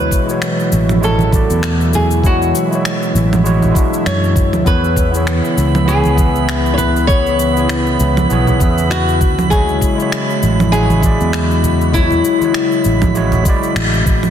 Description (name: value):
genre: sunset chillout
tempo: 99 BPM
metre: 4/4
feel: swing 57% on 16ths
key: unclear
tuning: A4 = 442 Hz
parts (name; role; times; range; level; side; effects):
- flamenco guitar; melody; 0.0-13.7 s; E4 to C#5; -19 LUFS; left 2 dB; tape echo
- overdriven tine electric piano; accompaniment; 0.0-14.3 s; G#3 to E5; -20 LUFS; moving between left 6 dB and right 4 dB; auto-pan, tape echo
- airy breathy pad; sustained chords; 0.0-14.3 s; B2 to E4; -20 LUFS; left 1 dB; chorus
- fingered electric bass; bass; 0.0-14.3 s; A1 to F#2; -16 LUFS; equal; none
- electronic kick drum; drums; 0.1-14.2 s; none; -15 LUFS; equal; none
- electronic shaker, finger snaps and congas; drums; 0.1-14.3 s; none; -21 LUFS; right 2 dB; soft clipping on snare
- congas; percussion; 1.2-13.4 s; none; -23 LUFS; right 2 dB; none
- drifting glass-harmonics texture; texture; 5.0-14.3 s; B5; -24 LUFS; right 5 dB; chorus, built-in reverb
room: moderate concert hall reverb, RT60 1.9 s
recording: dense, heavily limited modern master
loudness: -12 LUFS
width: side -9 dB against mid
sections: 0.0-14.3 A section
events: band accent 13.8-14.1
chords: 0.0 Dmaj9#11; 4.7 E6; 9.2 Dmaj9#11